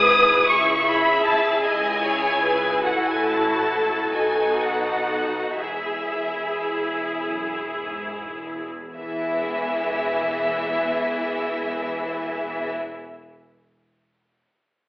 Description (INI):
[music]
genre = classical, slow romantic movement for string orchestra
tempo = 33-54 BPM (dotted quarters)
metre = 6/8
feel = rubato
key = E major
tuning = A4 = 440 Hz
[part]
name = warm symphonic violin section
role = melody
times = 0.0-12.7 s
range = E5 to D#6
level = -23 LUFS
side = left 1 dB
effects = none
[part]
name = rich symphonic violin section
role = second line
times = 0.0-12.8 s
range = E4 to E5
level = -25 LUFS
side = equal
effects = none
[part]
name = rich symphonic viola section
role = accompaniment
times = 0.0-12.7 s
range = E3 to G#4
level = -26 LUFS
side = equal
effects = none
[part]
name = rich symphonic double bass section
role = bass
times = 0.0-12.7 s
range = E1 to C#2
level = -38 LUFS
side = equal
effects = none
[part]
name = warm symphonic cello section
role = bass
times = 0.0-12.7 s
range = E2 to C#3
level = -36 LUFS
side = equal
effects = none
[sound]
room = wet recital hall reverb, RT60 1.3 s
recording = telephone sound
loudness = -20 LUFS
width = side -21 dB against mid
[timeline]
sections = 0.0-9.0 A section; 9.0-12.2 B section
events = slowing down 1.6-9.0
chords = 0.5 C#m; 2.8 F#m7/A; 4.1 B; 5.6 E